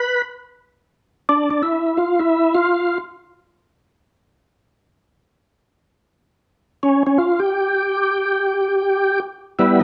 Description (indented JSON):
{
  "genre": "jazz",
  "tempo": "free time",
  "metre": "none",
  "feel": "none",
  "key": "unclear",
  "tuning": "A4 = 440 Hz",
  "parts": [
    { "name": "percussive tonewheel organ", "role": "solo", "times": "0.0-3.0, 6.8-9.8 s", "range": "G3 to B4", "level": "-18 LUFS", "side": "equal", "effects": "slow rotary speaker, overdrive, chorus vibrato" }
  ],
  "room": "moderate studio reverb, RT60 0.9 s",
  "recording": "none",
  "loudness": "-19 LUFS",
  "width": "mono",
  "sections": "0.0-9.6 A section",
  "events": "none",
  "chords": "none"
}